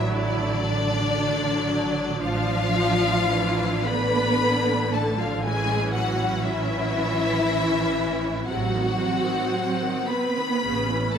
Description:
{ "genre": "classical, slow romantic movement for string orchestra", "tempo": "50-60 BPM", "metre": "3/4", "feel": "rubato", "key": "A major", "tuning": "A4 = 440 Hz", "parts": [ { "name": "rich studio violin section", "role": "melody", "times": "0.0-11.2 s", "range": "D5 to B5", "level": "-27 LUFS", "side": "left 5 dB", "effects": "none" }, { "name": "warm studio violin section", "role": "second line", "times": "0.0-11.2 s", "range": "D4 to B4", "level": "-27 LUFS", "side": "left 2 dB", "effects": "none" }, { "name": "rich studio viola section", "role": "accompaniment", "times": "0.0-11.2 s", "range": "C3 to E4", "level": "-29 LUFS", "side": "right 1 dB", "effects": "none" }, { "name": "rich studio double bass section", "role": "bass", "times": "0.0-11.2 s", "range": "A1", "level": "-28 LUFS", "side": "right 3 dB", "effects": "none" }, { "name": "warm studio cello section", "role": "bass", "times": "0.0-11.2 s", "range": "D3 to B3", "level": "-29 LUFS", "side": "right 4 dB", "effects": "none" } ], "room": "wet scoring stage reverb, RT60 1.4 s", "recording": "none", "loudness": "-21 LUFS", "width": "side -8 dB against mid", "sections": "0.0-11.2 A section", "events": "none", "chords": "0.0 D/A; 2.2 Dm/A; 5.4 A; 8.5 Adim7; 10.6 A" }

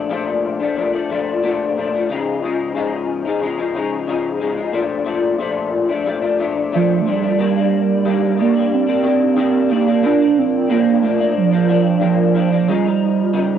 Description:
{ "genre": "indie pop", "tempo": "91 BPM", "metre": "4/4", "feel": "straight", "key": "Bb major", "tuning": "A4 = 439 Hz", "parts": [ { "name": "electric guitar through a small old amp", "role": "accompaniment", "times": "0.0-13.6 s", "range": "G2 to Eb4", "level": "-18 LUFS", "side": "left 5 dB", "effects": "ensemble chorus, warbly pitch drift, cassette tape" }, { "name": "warbly nostalgic lead", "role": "melody", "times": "6.7-13.6 s", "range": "F3 to D4", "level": "-15 LUFS", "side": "right 7 dB", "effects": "analog chorus, cassette tape, analog delay" } ], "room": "wet booth ambience, RT60 0.2 s", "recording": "home recording on cassette", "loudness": "-15 LUFS", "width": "side -8 dB against mid", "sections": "0.0-7.4 A section; 7.4-13.6 B section", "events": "none", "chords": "0.0 Bbmaj7; 2.1 Dbadd9; 4.7 Bbmaj7; 7.4 Ebmaj7; 10.0 Gm7; 12.7 Dbadd9" }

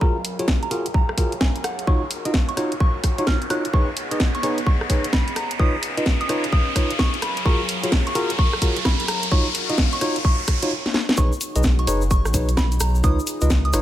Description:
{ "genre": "UK garage, two-step garage", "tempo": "129 BPM", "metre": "4/4", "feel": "swing 63% on 16ths", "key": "unclear", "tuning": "A4 = 435 Hz", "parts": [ { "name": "soft synth bell", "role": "melody", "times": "0.0-13.8 s", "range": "Gb5 to Gb6", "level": "-30 LUFS", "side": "right 1 dB", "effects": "chorus, low-pass filter, ping-pong delay" }, { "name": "warm analog pad", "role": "sustained chords", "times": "0.0-13.8 s", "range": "Gb3 to F#5", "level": "-34 LUFS", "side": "equal", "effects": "chorus, sidechain pumping" }, { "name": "tine electric piano", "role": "stabs", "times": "0.0-13.8 s", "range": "Eb4 to Eb5", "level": "-26 LUFS", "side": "equal", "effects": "digital delay" }, { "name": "electronic kick drum", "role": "drums", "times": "0.0-13.6 s", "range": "none", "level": "-20 LUFS", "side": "equal", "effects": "studio reverb" }, { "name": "riser", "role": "sound effects", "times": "0.0-10.7 s", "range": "none", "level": "-28 LUFS", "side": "equal", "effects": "none" }, { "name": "garage drum kit", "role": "drums", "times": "0.2-13.8 s", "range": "hi-hat, rim click, snare drum", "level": "-25 LUFS", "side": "equal", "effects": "studio reverb" }, { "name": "saturated sub bass", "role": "bass", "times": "11.2-13.8 s", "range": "F#1 to Db2", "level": "-20 LUFS", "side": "equal", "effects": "none" }, { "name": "tube shaker", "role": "percussion", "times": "11.2-13.8 s", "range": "none", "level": "-31 LUFS", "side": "left 4 dB", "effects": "none" } ], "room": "light reverb, digital ambience", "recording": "none", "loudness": "-18 LUFS", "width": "side -13 dB against mid", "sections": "0.0-11.2 A section; 11.2-13.8 B section", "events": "build-up 0.0-11.2; riser 0.0-10.7; drum fill 10.8-11.2; drop 11.2-13.8", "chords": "0.0 Gbmaj9; 1.9 Ebm9; 3.7 B69; 5.6 Db9; 7.2 Gbmaj9; 9.3 Ebm9; 11.2 B69; 13.0 Db9" }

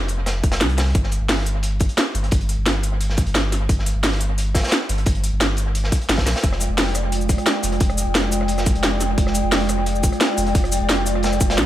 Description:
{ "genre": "liquid drum and bass", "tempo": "175 BPM", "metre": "4/4", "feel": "straight", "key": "F dorian", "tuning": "A4 = 445 Hz", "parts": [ { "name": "warm sub bass", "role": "bass", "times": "0.0-11.7 s", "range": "F1 to C2", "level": "-22 LUFS", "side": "equal", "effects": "tube saturation" }, { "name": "crunchy breakbeat drum kit", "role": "drums", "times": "0.1-11.6 s", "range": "hi-hat, snare drum", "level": "-27 LUFS", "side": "equal", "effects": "high-pass filter on hats, studio reverb, high-pass filter on snare, high-pass filter on room, analog delay" }, { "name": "drum and bass drum kit", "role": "drums", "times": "0.1-11.7 s", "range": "cabasa, hi-hat, rim click, snare drum", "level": "-22 LUFS", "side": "equal", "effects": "studio reverb" }, { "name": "electronic kick drum", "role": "drums", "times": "0.4-11.5 s", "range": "none", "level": "-19 LUFS", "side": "equal", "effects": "studio reverb" }, { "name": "airy breathy pad", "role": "sustained chords", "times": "6.4-11.7 s", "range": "Ab3 to G5", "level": "-23 LUFS", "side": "right 1 dB", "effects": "chorus, sidechain pumping" } ], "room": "light reverb, small room ambience", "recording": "echo-heavy mix", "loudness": "-17 LUFS", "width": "side -13 dB against mid", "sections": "0.0-11.7 A section", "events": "none", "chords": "0.0 F5; 0.9 N.C.; 6.4 Fm69" }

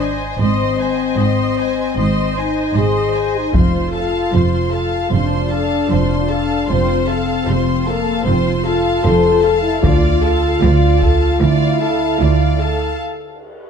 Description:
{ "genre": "cinematic, epic orchestral film score", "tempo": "76 BPM", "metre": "4/4", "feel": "straight", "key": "unclear", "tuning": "A4 = 438 Hz", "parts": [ { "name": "rich symphonic violin section", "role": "melody", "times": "0.0-13.0 s", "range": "F5 to C6", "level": "-27 LUFS", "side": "left 4 dB", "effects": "none" }, { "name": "rich symphonic violin section", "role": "second line", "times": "0.0-13.0 s", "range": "C5 to F5", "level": "-25 LUFS", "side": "left 2 dB", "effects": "none" }, { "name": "warm symphonic viola section", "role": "accompaniment", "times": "0.0-13.0 s", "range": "F4 to Eb5", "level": "-25 LUFS", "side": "right 3 dB", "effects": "none" }, { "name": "mellow French horn section", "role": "sustained chords", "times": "0.0-13.0 s", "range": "Bb3 to A4", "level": "-18 LUFS", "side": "left 4 dB", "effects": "none" }, { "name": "rich symphonic double bass section", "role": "bass", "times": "0.0-12.9 s", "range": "F1 to D2", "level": "-19 LUFS", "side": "right 3 dB", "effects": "none" }, { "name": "warm symphonic cello section", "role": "bass", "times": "0.0-12.9 s", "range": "D2 to Ab2", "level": "-21 LUFS", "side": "right 3 dB", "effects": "none" }, { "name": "taiko ensemble", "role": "drums", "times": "3.5-5.1, 9.8-11.4 s", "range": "none", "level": "-18 LUFS", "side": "left 1 dB", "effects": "none" }, { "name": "cymbal swell", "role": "sound effects", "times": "13.2-13.7 s", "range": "none", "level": "-37 LUFS", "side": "equal", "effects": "none" } ], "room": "moderate scoring stage reverb, RT60 1.6 s", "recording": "dark, warm production", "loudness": "-14 LUFS", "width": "side -7 dB against mid", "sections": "0.0-13.7 A section", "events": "break 13.0-13.7; cymbal swell 13.2-13.7", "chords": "0.0 Ab; 3.5 F; 9.8 Dm" }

